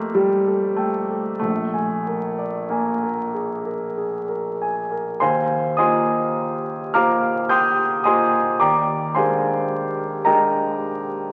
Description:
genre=classical, impressionist solo piano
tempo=46-55 BPM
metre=3/4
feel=rubato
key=unclear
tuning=A4 = 440 Hz
part: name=clear concert grand piano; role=solo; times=0.0-11.3 s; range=Bb1 to G6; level=-21 LUFS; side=equal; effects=none
room=wet concert hall reverb, RT60 1.9 s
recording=very old 78 rpm record, vinyl crackle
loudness=-21 LUFS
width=mono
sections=0.0-5.2 A section; 5.2-11.3 B section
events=none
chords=0.0 F9; 1.4 Bb7; 5.2 Bb13/Eb

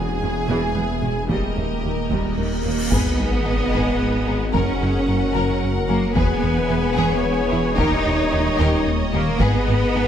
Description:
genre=cinematic, hybrid orchestral and electronic film score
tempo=74 BPM (dotted quarters)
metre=6/8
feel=straight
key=G# minor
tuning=A4 = 440 Hz
part: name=clear symphonic violin section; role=second line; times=0.0-10.0 s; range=C#4 to G#5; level=-29 LUFS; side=left 2 dB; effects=none
part: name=rich symphonic viola section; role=accompaniment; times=0.0-10.1 s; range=E3 to C#5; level=-30 LUFS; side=right 2 dB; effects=low-pass filter
part: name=glassy FM pad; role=sustained chords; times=0.0-10.1 s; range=D#5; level=-28 LUFS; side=equal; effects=ensemble chorus, built-in reverb, low-pass filter
part: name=rich symphonic cello section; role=bass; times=0.0-10.1 s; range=D#2 to D#4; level=-24 LUFS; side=right 2 dB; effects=none
part: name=rich symphonic double bass section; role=bass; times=0.0-10.0 s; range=E1 to E2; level=-27 LUFS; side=right 3 dB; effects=none
part: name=swelling detuned saw bass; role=bass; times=0.0-10.1 s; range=D#1 to G#1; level=-26 LUFS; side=equal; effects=none
part: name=taiko ensemble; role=drums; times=1.3-9.9 s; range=none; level=-25 LUFS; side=equal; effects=none
part: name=cymbal swell and sub drop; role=sound effects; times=2.3-4.5 s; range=none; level=-28 LUFS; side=equal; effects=none
part: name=rich studio violin section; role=melody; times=2.9-10.1 s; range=D#5 to G#5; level=-31 LUFS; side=left 4 dB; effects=low-pass filter
part: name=mellow French horn section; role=sustained chords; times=2.9-10.1 s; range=F#4 to B4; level=-28 LUFS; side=left 6 dB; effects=low-pass filter
part: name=smooth synth bass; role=riff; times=2.9-10.1 s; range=D#2 to G#3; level=-26 LUFS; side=left 2 dB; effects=low-pass filter
room=light reverb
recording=none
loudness=-18 LUFS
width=side -9 dB against mid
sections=0.0-2.9 A section; 2.9-10.1 B section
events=filter sweep 0.0-2.9; cymbal swell 2.3-2.9; impact 2.9-4.5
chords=0.0 E; 1.3 D#; 2.9 G#m; 4.5 F#; 6.2 E; 7.8 D#; 9.4 G#m

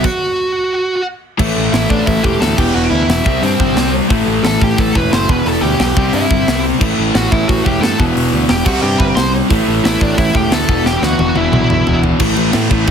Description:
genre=punk rock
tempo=178 BPM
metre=4/4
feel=straight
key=unclear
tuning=A4 = 440 Hz
part: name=high-gain lead guitar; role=melody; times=0.0-12.0 s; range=C4 to C6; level=-18 LUFS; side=right 1 dB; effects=distortion
part: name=crunchy overdriven guitar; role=riff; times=0.0-12.9 s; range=E2 to C4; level=-19 LUFS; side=right 13 dB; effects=none
part: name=high-gain distorted guitar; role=riff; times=0.0-12.9 s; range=E2 to C4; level=-22 LUFS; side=equal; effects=distortion
part: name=overdriven electric guitar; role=riff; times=0.0-12.9 s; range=E2 to C4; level=-18 LUFS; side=left 14 dB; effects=none
part: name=modern bright picked electric bass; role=bass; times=0.0-12.9 s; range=E1 to A2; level=-19 LUFS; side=equal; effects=none
part: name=tight metal drum kit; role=drums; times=0.0-12.9 s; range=crash cymbal, hi-hat, kick drum, snare drum, toms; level=-17 LUFS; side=equal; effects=none
room=light reverb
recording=heavily compressed radio sound, multiband compression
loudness=-12 LUFS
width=side -7 dB against mid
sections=0.0-1.4 A section; 1.4-12.2 B section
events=stop 0.0-1.4; drum fill 10.8-12.2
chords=0.0 N.C.; 1.4 A5; 2.6 Em; 3.2 C; 4.1 Am; 5.3 Em; 6.0 C; 6.8 A5; 8.0 Em; 8.7 C5; 9.5 A5; 10.7 Em; 11.3 E5; 12.2 A5

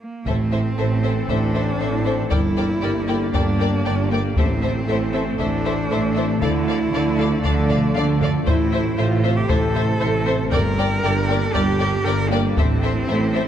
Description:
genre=cinematic, hybrid orchestral and electronic film score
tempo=117 BPM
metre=4/4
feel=straight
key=A phrygian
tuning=A4 = 438 Hz
part: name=rich cello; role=melody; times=0.0-13.5 s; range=Bb3 to Bb4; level=-26 LUFS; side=right 2 dB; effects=digital delay
part: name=warm symphonic violin section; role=melody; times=0.3-13.4 s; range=E5 to G5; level=-33 LUFS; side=left 6 dB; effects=none
part: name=warm symphonic violin section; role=second line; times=0.3-13.4 s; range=C5 to D5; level=-29 LUFS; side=left 4 dB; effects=none
part: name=rich symphonic viola section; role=accompaniment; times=0.3-13.4 s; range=A4 to C5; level=-31 LUFS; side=left 1 dB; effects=none
part: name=evolving wavetable pad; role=sustained chords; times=0.7-13.5 s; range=C3 to D5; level=-27 LUFS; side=left 2 dB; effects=chorus, built-in reverb
part: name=harp-like synth pluck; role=arpeggios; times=0.3-13.5 s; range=D3 to A4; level=-31 LUFS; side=right 1 dB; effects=none
part: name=dark tuba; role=bass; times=0.3-13.5 s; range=G1 to D2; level=-26 LUFS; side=right 3 dB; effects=none
part: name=rich symphonic cello section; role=bass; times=0.3-13.5 s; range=G2 to D3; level=-25 LUFS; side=right 1 dB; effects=none
part: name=warm symphonic double bass section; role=bass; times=0.3-13.5 s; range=G1 to D2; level=-26 LUFS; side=right 2 dB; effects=none
part: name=taiko ensemble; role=drums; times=0.3-13.1 s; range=none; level=-24 LUFS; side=left 1 dB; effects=none
room=moderate scoring stage reverb, RT60 1.7 s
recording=none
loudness=-18 LUFS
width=side -10 dB against mid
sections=0.3-13.5 A section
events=break 0.0; drum fill 7.7-8.5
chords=0.3 Am; 2.3 Gm; 4.4 Am; 6.4 Dm; 8.5 Am; 10.5 Gm; 12.6 Am

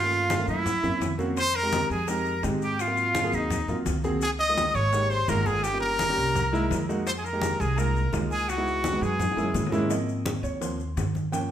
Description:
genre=Afro-Cuban jazz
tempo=169 BPM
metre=4/4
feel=straight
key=Ab major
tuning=A4 = 441 Hz
part: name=clear trumpet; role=melody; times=0.0-9.7 s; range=Eb4 to Eb5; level=-27 LUFS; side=equal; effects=none
part: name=breathy bright jazz flute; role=second line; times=0.0-9.7 s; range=Eb5 to Eb6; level=-31 LUFS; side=right 2 dB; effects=none
part: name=warm baby grand piano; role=accompaniment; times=0.0-11.5 s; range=F3 to G5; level=-30 LUFS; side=right 1 dB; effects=none
part: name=upright bass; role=bass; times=0.0-11.5 s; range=G1 to Ab2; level=-30 LUFS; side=equal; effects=none
part: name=congas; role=percussion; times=0.1-11.5 s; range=none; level=-33 LUFS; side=equal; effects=none
part: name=maracas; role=percussion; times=0.1-11.5 s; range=none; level=-42 LUFS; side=left 7 dB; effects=none
part: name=bongos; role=percussion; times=0.3-11.5 s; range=none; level=-38 LUFS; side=left 6 dB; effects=none
room=wet large studio reverb, RT60 1.0 s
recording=band playing live in one room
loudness=-23 LUFS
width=side -10 dB against mid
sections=0.0-9.9 A section; 9.9-11.5 B section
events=drum fill 9.2-9.9; grand piano solo 9.9-11.5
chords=0.0 Gm7b5; 0.7 Gb7#11; 1.4 Fm7; 2.8 Ab13; 4.2 Db69; 5.6 Gm7b5; 6.4 C7alt; 7.1 Fm11; 8.5 Dbm7; 9.2 Gb9; 9.9 Ab6

